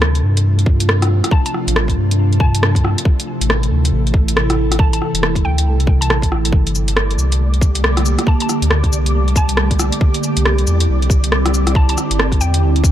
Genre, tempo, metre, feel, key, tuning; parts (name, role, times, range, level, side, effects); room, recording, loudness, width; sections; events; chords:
future garage; 138 BPM; 4/4; swing 61% on 16ths; D minor; A4 = 440 Hz
ethereal airy pad; sustained chords; 0.0-12.9 s; C3 to A4; -21 LUFS; equal; ensemble chorus, built-in reverb, vintage 12-bit sampler grit, sidechain pumping
warm sub bass; bass; 0.0-12.9 s; E1 to G2; -16 LUFS; equal; tube saturation, sidechain pumping
garage drum kit; drums; 0.0-12.9 s; cabasa, hi-hat, rim click; -19 LUFS; equal
electronic kick drum; drums; 0.7-12.9 s; -14 LUFS; equal
mallet-like synth pluck; melody; 1.3-12.6 s; G5 to A5; -27 LUFS; left 1 dB; chorus, tape echo
flickering grainy texture; texture; 7.1-12.9 s; D5 to D6; -30 LUFS; equal; built-in reverb, ensemble chorus
light reverb, digital ambience; lossy compression artefacts; -13 LUFS; side -11 dB against mid
0.0-12.9 A section
0.0 Dm7; 3.1 Am; 6.5 Gmadd9; 10.0 Cadd9